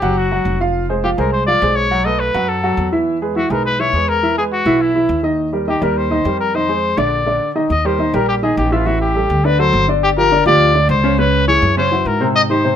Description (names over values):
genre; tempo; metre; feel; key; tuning
Afro-Cuban jazz; 207 BPM; 4/4; straight; unclear; A4 = 442 Hz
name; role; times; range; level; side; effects
warm trumpet; melody; 0.0-12.8 s; E4 to Eb5; -17 LUFS; left 3 dB; none
warm grand piano; accompaniment; 0.0-12.8 s; C3 to Gb5; -17 LUFS; right 1 dB; none
upright bass; bass; 0.0-12.7 s; F1 to Ab2; -20 LUFS; equal; none
room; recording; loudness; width
light reverb; minimal, uncompressed stereo recording; -13 LUFS; side -9 dB against mid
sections
0.0-7.7 A section; 7.7-12.8 B section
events
none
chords
0.2 N.C.; 0.7 Fm; 1.9 B5; 3.1 E6; 4.2 Eadd9; 5.4 Ebadd9; 6.5 Fm7; 7.1 Bb; 7.7 Eb; 8.9 A5; 9.4 D7; 10.0 Gm7; 11.2 Dbm7; 11.8 Gbsus2